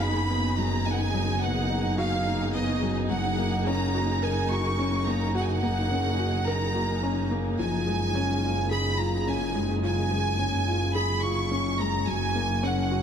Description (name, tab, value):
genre	piano and strings electronica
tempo	107 BPM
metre	4/4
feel	straight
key	F# major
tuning	A4 = 441 Hz
part	clear chamber violin section	melody	0.0-13.0 s	D#5 to C#6	-30 LUFS	right 2 dB	shimmer reverb
part	dark studio string section	sustained chords	0.0-13.0 s	A#3 to G#4	-34 LUFS	equal	shimmer reverb
part	felt-muted upright piano	riff	0.0-13.0 s	D#3 to A#4	-29 LUFS	left 3 dB	shimmer reverb
part	rich studio double bass section	bass	0.0-13.0 s	F#1	-28 LUFS	right 1 dB	none
room	moderate echo chamber reverb, RT60 1.9 s, small room reverb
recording	none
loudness	-24 LUFS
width	side -8 dB against mid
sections	0.0-13.0 A section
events	none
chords	0.0 B/F#; 3.1 F#; 7.6 C#/F#; 12.1 F#